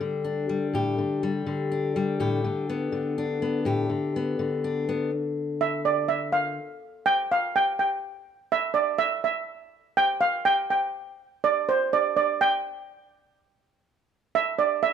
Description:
folk; 124 BPM; 3/4; straight; A4 = 441 Hz
fingerpicked steel-string acoustic guitar; accompaniment; 0.0-6.6 s; A2 to G4; -26 LUFS; left 3 dB
steel pan; melody; 5.6-14.9 s; C5 to G5; -22 LUFS; right 3 dB
moderate studio reverb, RT60 0.8 s; -23 LUFS; side -7 dB against mid
0.0-11.0 A section; 11.0-14.9 B section
build-up 0.0-11.0
0.0 Dsus4; 2.2 G/A; 5.1 N.C.

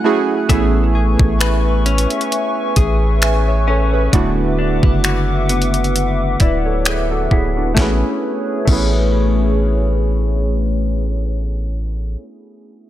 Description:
contemporary R&B; 66 BPM; 4/4; swing 54% on 16ths; A major; A4 = 440 Hz
warm analog keys; accompaniment; 0.0-12.9 s; A3 to G#5; -21 LUFS; right 4 dB; chorus, low-pass filter
hollow soft pad; sustained chords; 0.0-11.3 s; A3 to F#6; -23 LUFS; left 1 dB; chorus, low-pass filter
direct-recorded clean electric guitar; arpeggios; 0.0-12.3 s; D3 to B4; -24 LUFS; left 6 dB; lush chorus, low-pass filter, tape echo
long sustained 808-style bass; bass; 0.5-12.2 s; D1 to A1; -17 LUFS; equal
clean 12-bit digital drum machine; drums; 0.5-8.9 s; crash cymbal, finger snaps, hi-hat, kick drum, snare drum; -17 LUFS; equal; overdrive
little or no reverb; -14 LUFS; side -13 dB against mid
0.5-7.8 A section; 7.8-11.4 B section
break 0.0-0.5; synth keys fill 0.0-0.5; filter sweep 0.5-7.8
0.5 Amaj9; 4.1 D69; 7.8 Amaj9

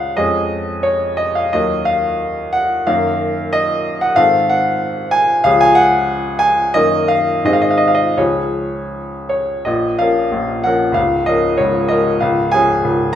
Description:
classical, romantic character piece for solo piano; 79-98 BPM; 2/4; rubato; Db major, Bb minor from 9.7 s; A4 = 436 Hz
bright baby grand piano; solo; 0.0-13.2 s; Db1 to Ab5; -13 LUFS; equal
wet recital hall reverb, RT60 1.4 s; minimal, uncompressed stereo recording; -13 LUFS; side -10 dB against mid
0.0-9.7 A section; 9.7-13.2 B section
0.2 Db/F; 1.5 Ebm; 2.9 Ebm/Gb; 4.2 Ab7b9; 5.4 Db; 6.7 Ebm/Gb; 7.4 Ab; 8.2 Db; 9.7 Bbm; 11.0 Bbm/Db; 12.2 Db

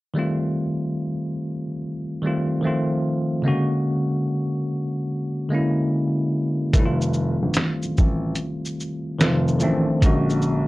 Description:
lo-fi hip hop; 73 BPM; 4/4; swing 66% on 16ths; A4 = 440 Hz
bell-like tine electric piano; accompaniment; 0.1-10.7 s; C#3 to F#4; -22 LUFS; equal; fast stereo tremolo, cassette tape, low-pass filter
dark baby grand piano; bass; 6.7-10.6 s; F1 to Bb1; -25 LUFS; left 1 dB
lo-fi sampler-style drum kit; drums; 6.7-10.7 s; hi-hat, kick drum, shaker, snare drum; -20 LUFS; equal
moderate studio reverb, RT60 0.5 s; cassette tape; -20 LUFS; side -19 dB against mid
0.2-6.7 A section; 6.7-10.7 B section
0.2 F9; 2.6 F7; 3.4 Bb7alt; 6.7 F9; 9.2 F7; 10.0 Bb7alt

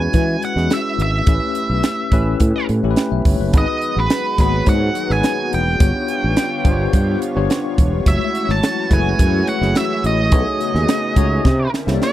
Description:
polished 1980s jazz-funk pop; 106 BPM; 4/4; straight; A4 = 441 Hz
octave-fuzz lead guitar; melody; 0.0-12.1 s; B4 to A5; -22 LUFS; right 2 dB; distortion, slapback echo
bell-like tine electric piano; accompaniment; 0.0-12.1 s; G#3 to G5; -22 LUFS; left 4 dB; medium stereo tremolo, analog chorus
sustaining fretless electric bass; bass; 0.0-12.0 s; E1 to E3; -18 LUFS; equal
crisp fusion drum kit; drums; 0.1-12.1 s; hi-hat, kick drum, snare drum; -17 LUFS; equal
lush unison pad; sustained chords; 3.5-12.1 s; C#3 to C#5; -27 LUFS; equal; chorus
little or no reverb; dry, close 1970s-style studio recording; -15 LUFS; side -13 dB against mid
0.0-12.1 A section
drum fill 11.5-12.1
0.0 E69; 1.3 A9; 3.5 G#m7; 5.8 G7#11; 8.1 F#m7; 10.3 B13; 11.5 C13

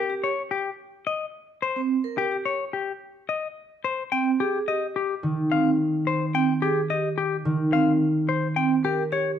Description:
classical, minimalist pattern music; 108 BPM; 4/4; straight; F minor; A4 = 440 Hz
semi-hollow electric guitar; melody; 0.0-9.3 s; G4 to G5; -26 LUFS; left 6 dB
vibraphone with medium hard mallets; arpeggios; 0.1-9.3 s; C4 to Bb4; -26 LUFS; right 7 dB
concert harp; accompaniment; 5.2-8.0 s; Eb3; -24 LUFS; equal
moderate large studio reverb, RT60 1.2 s; dark, warm production; -22 LUFS; side -9 dB against mid
0.0-3.6 A section; 3.6-9.4 A section
0.0 Eb (rootless); 3.6 F7(no3) (rootless); 8.0 Eb (rootless)

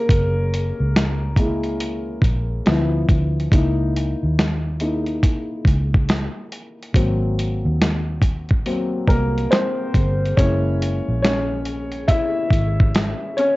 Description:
lo-fi hip hop; 70 BPM; 4/4; swing 64% on 16ths; A4 = 440 Hz
dark upright piano; accompaniment; 0.0-13.6 s; F3 to E5; -23 LUFS; left 1 dB; low-pass filter, cassette tape, plate reverb
vintage muted fingered electric bass; bass; 0.1-13.1 s; F#1 to D#2; -22 LUFS; equal
dusty soul sampler-style drum kit; drums; 0.1-13.6 s; hi-hat, kick drum, snare drum; -18 LUFS; equal; cassette tape
light reverb; home recording on cassette, nothing above 7.7 kHz; -17 LUFS; side -20 dB against mid
0.0-13.6 A section
upright piano solo 0.0-13.6
0.0 F#7; 2.7 Dm69; 3.5 C#m69; 6.9 G#7; 10.4 F#7

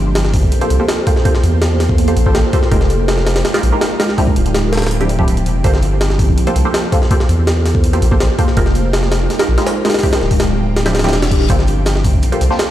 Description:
drum and bass, jungle; 164 BPM; 4/4; straight; G dorian; A4 = 440 Hz
ethereal airy pad; sustained chords; 0.0-12.7 s; F3 to C5; -20 LUFS; equal; ensemble chorus, built-in reverb, phaser
saturated sub bass; bass; 0.0-12.5 s; D1 to E2; -15 LUFS; equal; tube saturation
jungle sampler-style drum kit; drums; 0.2-12.7 s; hi-hat, kick drum, snare drum; -15 LUFS; equal
filtered dub chord stab; stabs; 0.6-12.7 s; F3 to C5; -20 LUFS; right 1 dB; phaser, dub echo
reverse cymbal; sound effects; 11.0-11.5 s; -28 LUFS; left 6 dB
shaker and snare drum; drums; 11.5-12.7 s; -31 LUFS; right 2 dB
light reverb, small room ambience; played on a big sound system in a bare room, stone room reverb; -12 LUFS; side -13 dB against mid
0.0-12.7 A section
reverse cymbal 11.0-11.5
0.0 Gm11; 2.7 Fm11; 4.2 Dm11; 5.6 Gm11; 8.6 Fm11; 10.0 Dm11; 11.5 Gm11

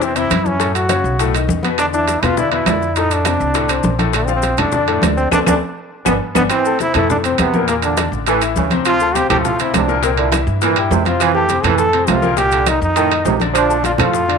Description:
latin, salsa; 204 BPM; 4/4; straight; A4 = 441 Hz
brilliant trombone; melody; 0.0-14.4 s; A3 to A4; -18 LUFS; right 1 dB
clear concert grand piano; accompaniment; 0.0-14.4 s; A2 to A5; -20 LUFS; left 12 dB
upright bass; bass; 0.0-14.4 s; G1 to G2; -22 LUFS; right 1 dB
bongos; percussion; 0.0-14.4 s; -28 LUFS; left 14 dB
congas; percussion; 0.0-14.4 s; -22 LUFS; right 1 dB
maracas; percussion; 0.0-14.3 s; -31 LUFS; left 18 dB
timbales; percussion; 0.2-14.4 s; -22 LUFS; right 16 dB
claves; percussion; 1.8-14.1 s; -28 LUFS; left 15 dB
bright trombone section; second line; 6.5-14.2 s; C3 to F3; -20 LUFS; right 11 dB
moderate spring reverb, RT60 1.8 s, studio ambience; 1960s-style stereo with parts hard left and right; -13 LUFS; side -6 dB against mid
0.0-6.5 A section; 6.5-14.4 B section
band accent 5.3-6.5; drum fill 5.8-6.5
0.0 Am (rootless); 0.6 F#m; 1.2 B7; 1.8 E5; 3.0 F6; 4.1 Bbmaj7; 5.3 D5; 5.9 G; 6.5 Fmaj7; 7.7 Bbmaj7#11; 8.3 A; 8.9 Dm7; 10.0 C7; 11.2 Fmaj7; 12.4 Cm7; 13.0 F7; 13.6 Bbmaj7

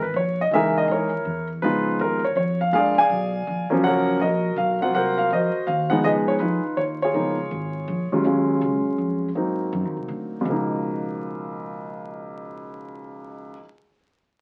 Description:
jazz piano trio; 163 BPM; 3/4; swing 65% on 8ths; Db mixolydian; A4 = 440 Hz
warm grand piano; melody; 0.0-13.6 s; Db2 to Ab5; -24 LUFS; equal
upright bass; bass; 0.0-13.5 s; Gb1 to Ab2; -32 LUFS; equal
moderate studio reverb, RT60 0.6 s; very old 78 rpm record, vinyl crackle; -23 LUFS; mono
0.0-8.2 A section; 8.2-10.5 B section; 10.5-12.7 C section
0.0 Gb13 (rootless); 1.6 Db9; 2.7 Bb7; 3.8 Ebm7; 4.9 Ab13 (rootless); 6.0 Db13; 8.2 Ebm11; 9.3 Ab7; 10.5 Db13

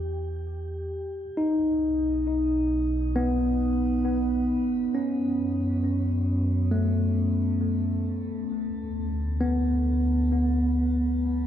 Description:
ambient; 67 BPM; 4/4; straight; A4 = 440 Hz
tine electric piano; arpeggios; 0.0-11.5 s; A3 to G4; -25 LUFS; equal; analog delay, shimmer reverb
round analog bass; bass; 0.0-11.5 s; B1 to F#2; -28 LUFS; equal
wet plate reverb, RT60 2.7 s; dreamy mix soaked in reverb; -23 LUFS; side -10 dB against mid
0.0-11.5 A section
0.0 Em; 1.4 B; 4.9 F#sus4; 8.5 D5

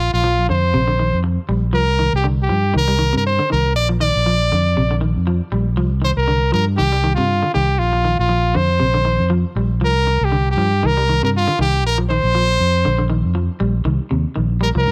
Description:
afrobeat; 119 BPM; 4/4; swing 56% on 16ths; C minor; A4 = 442 Hz
brilliant trumpet; melody; 0.0-14.9 s; F4 to D5; -21 LUFS; equal
fingered electric bass; bass; 0.0-14.9 s; Bb1 to G2; -20 LUFS; equal
electric guitar at the edge of break-up; arpeggios; 0.2-14.9 s; C3 to G3; -26 LUFS; equal; spring reverb
small room reverb; dry, close 1970s-style studio recording; -17 LUFS; mono
0.0-13.9 A section; 13.9-14.9 B section
0.0 Bbsus2; 1.7 Cm; 3.8 Bb; 5.8 Cm; 7.8 Bbsus2; 9.8 Cm; 11.8 Bbsus2; 13.9 Cm7

